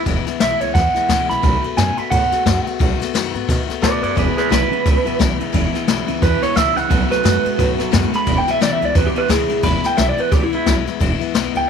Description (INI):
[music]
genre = rockabilly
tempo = 176 BPM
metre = 4/4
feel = swing 59% on 8ths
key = E major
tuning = A4 = 440 Hz
[part]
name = picked steel-string acoustic guitar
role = accompaniment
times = 0.0-11.7 s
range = E2 to F#4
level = -23 LUFS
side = left 11 dB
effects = none
[part]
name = upright bass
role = bass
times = 0.1-11.6 s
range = E1 to B2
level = -21 LUFS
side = right 2 dB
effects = none
[part]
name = jazz brush drum kit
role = drums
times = 0.1-11.6 s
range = crash cymbal, kick drum, ride cymbal, snare drum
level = -20 LUFS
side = left 3 dB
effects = none
[part]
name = electric guitar through a small old amp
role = melody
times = 0.4-11.7 s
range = E4 to B5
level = -19 LUFS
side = right 3 dB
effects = tape echo
[part]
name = electric guitar through a small old amp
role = riff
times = 4.2-9.6 s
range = E2 to G#3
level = -25 LUFS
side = right 16 dB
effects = none
[sound]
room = light reverb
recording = 1960s-style stereo with parts hard left and right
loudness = -15 LUFS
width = side -7 dB against mid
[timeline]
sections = 0.0-9.6 A section; 9.6-11.7 A section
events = clean electric guitar solo 0.0-11.7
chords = 0.0 E; 1.4 B7; 4.2 E; 6.9 B7; 8.3 E